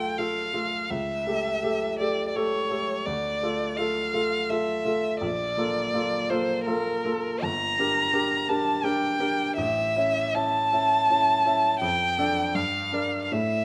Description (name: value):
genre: classical, romantic duo for violin and grand piano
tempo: 83 BPM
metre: 3/4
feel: rubato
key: D minor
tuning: A4 = 440 Hz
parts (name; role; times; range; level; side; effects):
- rich violin; melody; 0.0-13.6 s; Bb4 to Bb5; -27 LUFS; equal; none
- bright baby grand piano; accompaniment; 0.0-13.6 s; G1 to E5; -30 LUFS; equal; none
room: moderate recital hall reverb, RT60 1.6 s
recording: none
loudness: -26 LUFS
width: mono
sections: 0.0-13.6 A section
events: none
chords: 0.0 Dm; 0.9 A7/C#; 3.1 Dm; 5.2 Bbmaj7; 7.4 Gm; 9.6 A; 11.8 Dm/F; 12.5 Gm7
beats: 0.18 | 0.90 1.63 2.35 | 3.06 3.78 4.50 | 5.21 5.93 6.66 | 7.42 8.14 8.84 | 9.58 10.35 11.09 | 11.81 12.54 13.31